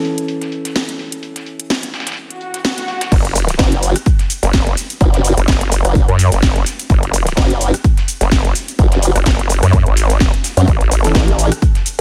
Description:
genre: bass house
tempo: 127 BPM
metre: 4/4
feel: swing 55% on 16ths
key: unclear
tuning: A4 = 438 Hz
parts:
  - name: dark grand piano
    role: stabs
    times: 0.0-3.1, 11.0-11.2 s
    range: E3 to A4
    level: -25 LUFS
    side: equal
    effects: sidechain pumping, diffuse ambient delay
  - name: breakbeat sampler-style drum kit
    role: drums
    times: 0.0-12.0 s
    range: hi-hat, snare drum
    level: -32 LUFS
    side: equal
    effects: high-pass filter on hats, low-pass filter on hats, high-pass filter on snare, low-pass filter on snare
  - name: house drum kit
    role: drums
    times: 0.2-12.0 s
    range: crash cymbal, hi-hat, rim click, shaker, snare drum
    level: -23 LUFS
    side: equal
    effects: none
  - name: swell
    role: sound effects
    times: 2.3-3.1 s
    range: none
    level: -27 LUFS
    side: equal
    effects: none
  - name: vowel-sweep wobble bass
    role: bass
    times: 3.1-12.0 s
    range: F#1 to F#2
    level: -16 LUFS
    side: equal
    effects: chorus, overdrive, sidechain pumping
  - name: electronic kick drum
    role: drums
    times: 3.1-11.7 s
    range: none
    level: -16 LUFS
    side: equal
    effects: none
  - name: formant-sweep wobble bass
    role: bass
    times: 3.6-11.5 s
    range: F#1 to F#2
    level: -16 LUFS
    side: equal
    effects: chorus, tube saturation, sidechain pumping
room: light reverb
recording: none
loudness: -15 LUFS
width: mono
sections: 0.0-3.1 A section; 3.1-12.0 B section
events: filter sweep on grand piano 0.0-3.1; swell 2.3-3.1; drop 3.1-12.0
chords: 0.0 A; 3.1 N.C.; 10.7 A

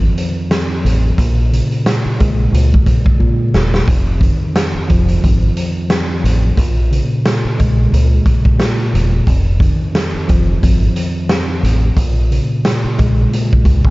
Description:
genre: hip hop, boom-bap hip-hop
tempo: 89 BPM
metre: 4/4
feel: swing 58% on 16ths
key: Bb minor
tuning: A4 = 440 Hz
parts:
  - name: mellow tine electric piano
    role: accompaniment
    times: 0.0-13.9 s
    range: F2 to Ab3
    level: -17 LUFS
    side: equal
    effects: medium stereo tremolo, high-pass filter, low-pass filter
  - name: deep dub fingered electric bass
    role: bass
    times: 0.0-13.9 s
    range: E1 to Db2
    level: -14 LUFS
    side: equal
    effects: none
  - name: raw garage drum kit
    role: drums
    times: 0.2-13.9 s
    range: hi-hat, kick drum, snare drum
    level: -15 LUFS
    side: equal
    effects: none
room: light reverb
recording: dark, warm production, vinyl crackle, nothing above 7.6 kHz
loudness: -12 LUFS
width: side -21 dB against mid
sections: 0.0-13.9 A section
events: drum fill 3.2-3.9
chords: 0.0 F7(no3); 1.2 Bbm7; 3.9 F7(no3); 6.6 Bbm7; 9.3 F7(no3); 12.0 Bbm7

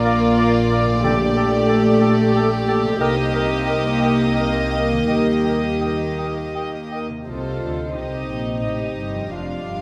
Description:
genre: cinematic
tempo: 82-94 BPM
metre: 3/4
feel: rubato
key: unclear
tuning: A4 = 440 Hz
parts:
  - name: warm symphonic violin section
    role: melody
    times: 0.0-9.8 s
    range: C5 to F5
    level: -30 LUFS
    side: equal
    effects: none
  - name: warm clarinet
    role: second line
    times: 0.0-7.1 s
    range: A4 to Bb4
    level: -30 LUFS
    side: equal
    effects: none
  - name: warm oboe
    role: second line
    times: 0.0-7.1 s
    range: D5 to Eb5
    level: -31 LUFS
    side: equal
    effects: none
  - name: warm symphonic violin section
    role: second line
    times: 0.0-9.8 s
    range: F4 to A4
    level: -31 LUFS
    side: equal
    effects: none
  - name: dark studio viola section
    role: accompaniment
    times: 0.0-9.8 s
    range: A3 to F4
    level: -25 LUFS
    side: equal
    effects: none
  - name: mellow French horn section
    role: sustained chords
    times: 0.0-9.8 s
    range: G3 to Eb5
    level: -27 LUFS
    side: equal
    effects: none
  - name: concert harp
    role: arpeggios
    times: 0.0-9.8 s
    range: F2 to Eb5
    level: -34 LUFS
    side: equal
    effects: none
  - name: warm symphonic cello section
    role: bass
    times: 0.0-9.8 s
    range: F2 to Eb3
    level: -30 LUFS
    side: equal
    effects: none
  - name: warm symphonic double bass section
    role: bass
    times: 0.0-9.8 s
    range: F1 to Eb2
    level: -29 LUFS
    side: equal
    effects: none
  - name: concert flute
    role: second line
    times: 0.1-7.0 s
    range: F5 to G5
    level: -34 LUFS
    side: equal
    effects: none
  - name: timpani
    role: percussion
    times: 1.0-2.0 s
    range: Bb2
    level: -32 LUFS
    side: equal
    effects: none
room: wet scoring stage reverb, RT60 1.8 s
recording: none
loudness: -20 LUFS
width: mono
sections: 0.0-7.3 A section; 7.3-9.8 B section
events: none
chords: 0.0 Bb; 1.0 Gmadd9/Bb; 3.0 Cm7; 5.1 Eb; 7.3 Cm7; 9.3 Fsus2

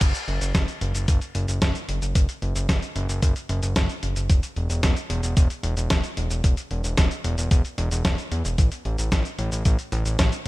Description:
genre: italo disco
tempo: 112 BPM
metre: 4/4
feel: straight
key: F# minor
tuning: A4 = 440 Hz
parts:
  - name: fat analog bass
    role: bass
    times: 0.0-10.5 s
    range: E1 to E2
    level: -25 LUFS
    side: equal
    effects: none
  - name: dusty soul sampler-style drum kit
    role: drums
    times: 0.0-10.5 s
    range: cabasa, crash cymbal, hi-hat, snare drum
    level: -28 LUFS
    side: equal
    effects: overdrive
  - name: electronic kick drum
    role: drums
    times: 0.0-10.3 s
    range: none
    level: -20 LUFS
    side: equal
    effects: none
room: little or no reverb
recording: none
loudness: -21 LUFS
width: side -19 dB against mid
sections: 0.0-10.5 A section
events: none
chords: none

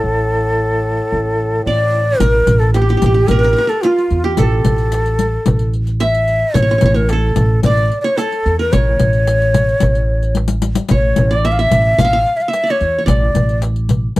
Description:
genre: Arabic maqam ensemble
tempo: 110 BPM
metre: 4/4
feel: straight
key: A maqam hijaz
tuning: A4 = 440 Hz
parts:
  - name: breathy ney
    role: melody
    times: 0.0-13.6 s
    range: F4 to F5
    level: -16 LUFS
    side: left 1 dB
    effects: none
  - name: upright bass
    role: bass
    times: 0.0-14.2 s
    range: A1 to E2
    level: -16 LUFS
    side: equal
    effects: none
  - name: warm duduk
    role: drone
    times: 0.0-2.3 s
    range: A2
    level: -24 LUFS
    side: left 1 dB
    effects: none
  - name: qanun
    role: second line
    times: 1.7-14.0 s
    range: F4 to F5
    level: -21 LUFS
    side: right 4 dB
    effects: none
  - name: darbuka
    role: percussion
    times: 2.2-14.2 s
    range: none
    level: -19 LUFS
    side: left 1 dB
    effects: none
  - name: riq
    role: percussion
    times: 2.2-14.2 s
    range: none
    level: -22 LUFS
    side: left 6 dB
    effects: none
room: light reverb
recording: dry, close 1970s-style studio recording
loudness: -12 LUFS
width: side -18 dB against mid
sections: 0.0-2.2 A section; 2.2-14.2 B section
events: drum fill 10.4-10.9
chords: none

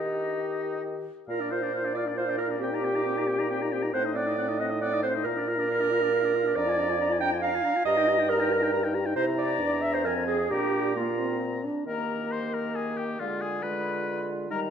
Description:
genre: quick classical-period movement for wind quintet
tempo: 136 BPM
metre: 3/4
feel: straight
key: Bb major, Eb major from 6.6 s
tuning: A4 = 440 Hz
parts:
  - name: silver concert flute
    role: melody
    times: 0.0-14.7 s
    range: F4 to C6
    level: -33 LUFS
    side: left 9 dB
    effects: none
  - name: bright oboe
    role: second line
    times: 0.0-14.6 s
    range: Eb4 to Bb5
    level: -35 LUFS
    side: left 5 dB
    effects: none
  - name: warm French horn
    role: accompaniment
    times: 0.0-14.7 s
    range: G3 to G4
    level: -32 LUFS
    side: left 1 dB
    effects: none
  - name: warm clarinet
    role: accompaniment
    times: 0.0-14.7 s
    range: Eb4 to G5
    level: -28 LUFS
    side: right 5 dB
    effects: none
  - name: mellow bassoon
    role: bass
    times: 0.0-14.7 s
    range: E2 to Eb3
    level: -33 LUFS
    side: equal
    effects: none
room: wet recital hall reverb, RT60 1.6 s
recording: dark, warm production, lossy compression artefacts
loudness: -25 LUFS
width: side -8 dB against mid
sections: 0.0-1.3 A section; 1.3-11.9 B section; 11.9-14.7 A section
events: none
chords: 0.0 Eb; 1.3 Bb; 2.6 Cm7/Bb; 3.9 Adim7; 5.3 Bb; 6.6 Bb7/F; 7.9 Eb/G; 9.2 C7; 10.0 Fm; 10.5 Bb; 11.9 Eb; 13.2 Ddim7

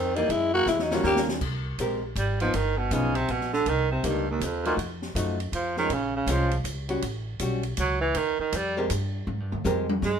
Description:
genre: jazz, small-group swing and bop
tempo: 160 BPM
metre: 3/4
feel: swing 64% on 8ths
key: Ab major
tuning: A4 = 439 Hz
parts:
  - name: growling tenor saxophone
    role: melody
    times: 0.0-1.2 s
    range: C4 to G4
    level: -24 LUFS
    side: left 2 dB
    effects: none
  - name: breathy baritone saxophone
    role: second line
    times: 0.0-10.2 s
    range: Eb2 to Bb3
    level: -27 LUFS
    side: right 4 dB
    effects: none
  - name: upright bass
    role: bass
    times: 0.0-10.2 s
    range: G1 to Ab2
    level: -30 LUFS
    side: equal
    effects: none
  - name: archtop guitar, miked and amplified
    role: accompaniment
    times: 0.2-9.9 s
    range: Eb3 to Bb4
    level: -29 LUFS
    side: left 1 dB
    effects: none
  - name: open jazz drum kit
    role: drums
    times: 0.2-10.1 s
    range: crash cymbal, hi-hat, kick drum, ride cymbal, snare drum, toms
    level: -34 LUFS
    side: equal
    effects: none
room: moderate studio reverb, RT60 0.7 s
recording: minimal, uncompressed stereo recording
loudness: -24 LUFS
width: side -7 dB against mid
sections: 0.0-1.4 A section; 1.4-10.2 B section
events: drum fill 0.7-1.4, 9.3-10.0; baritone saxophone solo 1.4-10.2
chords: 0.3 Gb5; 1.0 Eb9; 1.4 Abmaj9; 2.5 G7alt; 3.7 Cm7; 4.8 F7b9; 5.9 Bbm7; 7.0 A13; 8.2 Abmaj9

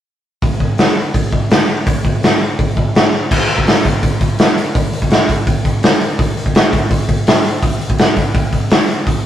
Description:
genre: punk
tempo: 166 BPM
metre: 4/4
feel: straight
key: none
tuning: none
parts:
  - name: raw garage drum kit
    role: drums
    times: 0.4-9.2 s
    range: crash cymbal, hi-hat, kick drum, snare drum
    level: -12 LUFS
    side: equal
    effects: none
room: little or no reverb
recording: rough rehearsal-room recording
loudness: -12 LUFS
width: side -11 dB against mid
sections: 0.4-3.3 A section; 3.3-9.3 B section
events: none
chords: none

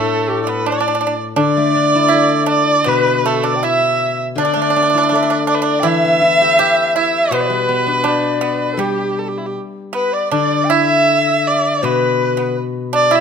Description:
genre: chinese traditional, Chinese chamber ensemble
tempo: 81 BPM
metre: 2/4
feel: rubato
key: unclear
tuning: A4 = 442 Hz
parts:
  - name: rich erhu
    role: melody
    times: 0.0-13.2 s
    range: E4 to E5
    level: -17 LUFS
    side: right 4 dB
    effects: none
  - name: bright reedy large dizi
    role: second line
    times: 0.0-13.2 s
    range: G4 to G5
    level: -19 LUFS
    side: left 6 dB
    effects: none
  - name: pipa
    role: second line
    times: 0.0-13.2 s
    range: G3 to G4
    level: -21 LUFS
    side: right 8 dB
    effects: none
  - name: steel-string zither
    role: accompaniment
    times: 0.0-13.2 s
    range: A2 to B4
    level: -20 LUFS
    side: left 5 dB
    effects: none
room: light reverb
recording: close, detailed microphones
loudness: -13 LUFS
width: side -6 dB against mid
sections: 0.0-10.3 A section; 10.3-13.2 B section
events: none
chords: none

